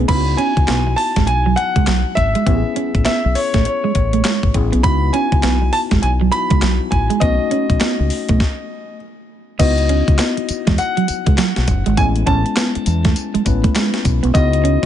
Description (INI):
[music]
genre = R&B, new jack swing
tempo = 101 BPM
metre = 4/4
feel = swing 62% on 16ths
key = C# minor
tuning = A4 = 440 Hz
[part]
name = tine electric piano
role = accompaniment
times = 0.0-14.9 s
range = G#3 to B4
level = -24 LUFS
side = left 9 dB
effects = none
[part]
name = electric guitar at the edge of break-up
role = riff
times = 0.0-14.9 s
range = F#3 to C#4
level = -22 LUFS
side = right 8 dB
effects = wide subtle chorus
[part]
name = deep dub fingered electric bass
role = bass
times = 0.0-14.9 s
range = F#1 to E2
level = -18 LUFS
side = equal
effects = none
[part]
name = warm concert grand piano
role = melody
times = 0.1-14.9 s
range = C#5 to B5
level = -21 LUFS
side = left 1 dB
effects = ping-pong delay
[part]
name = crisp 8-bit digital drum machine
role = drums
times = 0.1-14.9 s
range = crash cymbal, handclaps, hi-hat, kick drum, snare drum, tambourine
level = -19 LUFS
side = equal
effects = none
[sound]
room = light reverb, digital ambience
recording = nothing above 10.3 kHz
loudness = -14 LUFS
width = side -10 dB against mid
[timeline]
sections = 0.1-9.6 A section; 9.6-14.9 B section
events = stop 8.4-9.6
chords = 0.1 C#m11; 2.5 Amaj9; 4.8 C#m11; 7.2 B7; 9.6 C#m11; 12.0 Amaj9; 14.3 C#m11